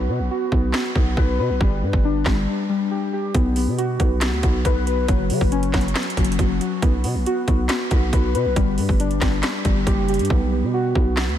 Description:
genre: hip hop, trap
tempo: 138 BPM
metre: 4/4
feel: half-time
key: B minor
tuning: A4 = 443 Hz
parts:
  - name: warbly lo-fi synth keys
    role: arpeggios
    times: 0.0-11.4 s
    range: F#3 to B4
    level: -23 LUFS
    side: left 2 dB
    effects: chorus, low-pass filter, ping-pong delay
  - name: growling 808-style bass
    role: bass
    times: 0.0-11.4 s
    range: F#1 to C#3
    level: -22 LUFS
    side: equal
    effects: none
  - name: trap drum kit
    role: drums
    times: 0.5-11.3 s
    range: handclaps, hi-hat, kick drum, snare drum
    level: -22 LUFS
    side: equal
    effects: overdrive
room: moderate huge ambient reverb, RT60 4.7 s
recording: dreamy mix soaked in reverb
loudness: -18 LUFS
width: side -10 dB against mid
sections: 0.0-11.4 A section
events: break 0.0-3.3; hi-hats muted 10.3-11.4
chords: 0.0 B5; 1.6 G5; 3.3 B5; 5.1 F#5; 6.8 B5; 8.6 G5; 10.3 B5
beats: 0.30 0.74 1.17 | 1.61 2.04 2.48 2.91 | 3.35 3.78 4.22 4.65 | 5.08 5.52 5.96 6.39 | 6.82 7.26 7.69 8.13 | 8.56 9.00 9.43 9.87 | 10.30 10.74 11.17

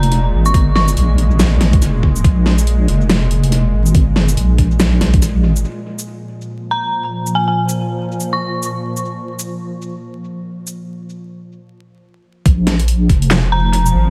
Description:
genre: deep dubstep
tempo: 141 BPM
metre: 4/4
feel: swing 60% on 16ths, half-time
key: Bb minor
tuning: A4 = 441 Hz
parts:
  - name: dark detuned synth bell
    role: melody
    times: 0.0-1.4, 6.7-8.8, 13.5-13.9 s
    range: Ab5 to Db6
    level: -23 LUFS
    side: equal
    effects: chorus, dub echo
  - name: bowed-like drone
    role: sustained chords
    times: 0.0-14.1 s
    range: Bb2 to Ab3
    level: -25 LUFS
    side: equal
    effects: built-in reverb
  - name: deep soft wobble bass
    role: bass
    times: 0.0-5.6, 12.5-14.1 s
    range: F1 to Bb1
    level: -16 LUFS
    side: equal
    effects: chorus
  - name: dubstep drum kit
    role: drums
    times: 0.0-13.9 s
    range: handclaps, hi-hat, shaker, snare drum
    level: -21 LUFS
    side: equal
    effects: overdrive, tape echo
  - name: electronic kick drum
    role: drums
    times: 0.5-5.2, 12.5-13.2 s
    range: none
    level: -14 LUFS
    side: equal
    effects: overdrive
room: light reverb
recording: echo-heavy mix, vinyl crackle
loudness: -15 LUFS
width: mono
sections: 0.0-5.6 A section; 5.6-12.5 B section; 12.5-14.1 C section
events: break 5.2-5.6, 10.8-12.5; filter sweep on synth drone 5.6-12.5; drop 12.5-14.1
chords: 0.0 Bb5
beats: 0.12 | 0.54 0.97 1.39 1.82 | 2.24 2.67 3.10 3.52 | 3.95 4.37 4.80 5.22 | 5.65 6.07 6.50 6.92 | 7.35 7.78 8.20 8.63 | 9.05 9.48 9.90 10.33 | 10.76 11.18 11.61 12.03 | 12.46 12.88 13.31 13.73

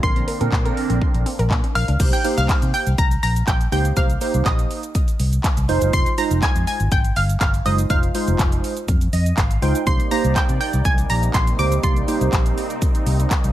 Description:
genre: dance-pop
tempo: 122 BPM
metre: 4/4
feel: straight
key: C minor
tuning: A4 = 439 Hz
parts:
  - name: analog pluck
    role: melody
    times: 0.0-13.3 s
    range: Eb5 to D6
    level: -24 LUFS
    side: equal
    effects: chorus, ping-pong delay
  - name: glassy digital keys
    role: accompaniment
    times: 0.0-12.7 s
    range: D3 to G5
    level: -24 LUFS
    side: right 3 dB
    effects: chorus, sidechain pumping
  - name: filtered supersaw swell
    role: sustained chords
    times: 0.0-2.0, 9.9-13.5 s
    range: C3 to D5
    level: -29 LUFS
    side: equal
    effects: sidechain pumping
  - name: wide unison pluck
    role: arpeggios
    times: 0.0-2.0 s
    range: C4 to Bb4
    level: -31 LUFS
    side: left 2 dB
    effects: auto-pan, sidechain pumping, ping-pong delay
  - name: vintage muted fingered electric bass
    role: bass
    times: 0.0-13.5 s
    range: F1 to C3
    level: -20 LUFS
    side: equal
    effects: sidechain pumping
  - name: pop drum kit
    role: drums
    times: 0.0-13.5 s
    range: crash cymbal, handclaps, hi-hat, kick drum, shaker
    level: -20 LUFS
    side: equal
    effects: none
room: digital ambience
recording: none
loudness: -17 LUFS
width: side -13 dB against mid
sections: 0.0-2.0 A section; 2.0-13.5 B section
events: synth keys fill 8.9-9.9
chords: 0.0 Bbadd9; 2.0 Cm7; 5.7 Fm7; 9.9 Cm7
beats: | 0.03 0.52 1.01 1.51 | 2.00 2.49 2.98 3.47 | 3.97 4.46 4.95 5.44 | 5.93 6.42 6.92 7.41 | 7.90 8.39 8.88 9.38 | 9.87 10.36 10.85 11.34 | 11.83 12.33 12.82 13.31

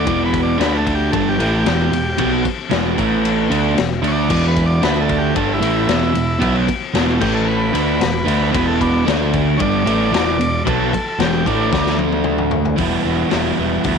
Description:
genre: garage rock duo or trio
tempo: 113 BPM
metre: 4/4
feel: straight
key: E minor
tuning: A4 = 442 Hz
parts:
  - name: overdriven combo organ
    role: melody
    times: 0.0-12.0 s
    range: B3 to D5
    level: -23 LUFS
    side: right 1 dB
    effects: none
  - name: crunchy overdriven guitar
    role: riff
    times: 0.0-14.0 s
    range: E2 to E4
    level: -17 LUFS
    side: right 1 dB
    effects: none
  - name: growling picked electric bass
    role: bass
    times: 0.0-14.0 s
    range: E1 to D2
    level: -23 LUFS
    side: right 1 dB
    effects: overdrive
  - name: raw garage drum kit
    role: drums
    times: 0.1-14.0 s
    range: crash cymbal, hi-hat, kick drum, ride cymbal, snare drum, toms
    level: -22 LUFS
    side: left 6 dB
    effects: none
room: studio ambience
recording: 1960s-style stereo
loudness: -15 LUFS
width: side -6 dB against mid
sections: 0.0-12.8 A section; 12.8-14.0 B section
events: transistor combo organ solo 0.0-12.8; drum fill 11.7-12.8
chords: 0.0 E5; 0.6 D5; 1.1 Em; 3.0 A5; 3.5 E5; 4.8 D5; 5.4 Em; 7.2 A5; 7.7 E5; 9.1 D5; 9.6 Em; 11.7 D5; 12.8 Em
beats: | 0.06 0.59 1.12 1.65 | 2.18 2.71 3.24 3.77 | 4.30 4.83 5.36 5.89 | 6.42 6.95 7.48 8.01 | 8.54 9.07 9.60 10.13 | 10.66 11.19 11.72 12.25 | 12.78 13.31 13.84

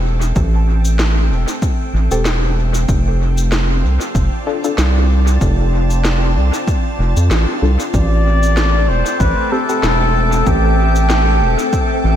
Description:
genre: ambient dub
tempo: 95 BPM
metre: 4/4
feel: swing 55% on 16ths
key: A minor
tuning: A4 = 438 Hz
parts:
  - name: soft additive organ-like pad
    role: sustained chords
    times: 0.0-12.2 s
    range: A3 to A5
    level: -22 LUFS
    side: equal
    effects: ensemble chorus, built-in reverb
  - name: round analog bass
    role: bass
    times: 0.0-12.2 s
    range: E1 to F2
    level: -14 LUFS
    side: equal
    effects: none
  - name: electronic shaker and snare drum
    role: drums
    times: 0.2-11.9 s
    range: none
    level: -23 LUFS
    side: equal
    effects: dub echo
  - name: electronic kick drum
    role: drums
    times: 0.4-11.9 s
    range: none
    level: -18 LUFS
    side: equal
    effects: overdrive
  - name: filtered dub chord stab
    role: stabs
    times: 2.1-9.9 s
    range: C4 to A4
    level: -26 LUFS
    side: left 3 dB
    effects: chorus, dub echo
  - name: trumpet with cup mute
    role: melody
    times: 7.9-12.1 s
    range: G4 to D5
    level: -19 LUFS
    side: left 3 dB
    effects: dub echo
  - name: wind-like tuned noise texture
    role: texture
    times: 8.9-12.2 s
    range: C4 to A4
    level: -26 LUFS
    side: equal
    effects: built-in reverb
room: light reverb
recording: none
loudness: -13 LUFS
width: side -10 dB against mid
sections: 0.0-12.2 A section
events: fade-in on ambient pad 0.0-12.2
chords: 0.0 Am7; 2.9 F6; 7.9 Am7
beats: | 0.36 0.99 1.62 2.25 | 2.88 3.52 4.15 4.78 | 5.41 6.04 6.67 7.31 | 7.94 8.57 9.20 9.83 | 10.46 11.10 11.73

